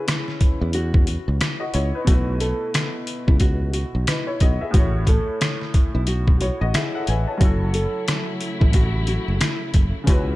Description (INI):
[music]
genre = hip hop, boom-bap hip-hop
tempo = 90 BPM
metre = 4/4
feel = swing 60% on 16ths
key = F# dorian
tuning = A4 = 442 Hz
[part]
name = nylon-string guitar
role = melody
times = 0.0-10.4 s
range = E4 to A4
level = -29 LUFS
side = equal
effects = high-pass filter, low-pass filter, ping-pong delay
[part]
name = warm upright piano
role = accompaniment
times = 0.0-10.4 s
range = A2 to A5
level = -29 LUFS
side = left 1 dB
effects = cassette tape, high-pass filter, low-pass filter
[part]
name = trip hop sampler-style drum kit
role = drums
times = 0.1-10.3 s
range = hi-hat, kick drum, rim click, snare drum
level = -19 LUFS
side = equal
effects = vintage 12-bit sampler grit
[part]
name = sustaining fretless electric bass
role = bass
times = 0.6-10.4 s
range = F#1 to E2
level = -22 LUFS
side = equal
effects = none
[part]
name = warm studio string section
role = sustained chords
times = 7.4-10.4 s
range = C#3 to E4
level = -31 LUFS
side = equal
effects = high-pass filter, low-pass filter
[sound]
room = small room ambience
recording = none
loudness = -18 LUFS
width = side -18 dB against mid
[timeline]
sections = 0.0-10.4 A section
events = none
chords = 0.0 C#m7; 2.1 B7sus4; 4.7 A; 7.4 F#m7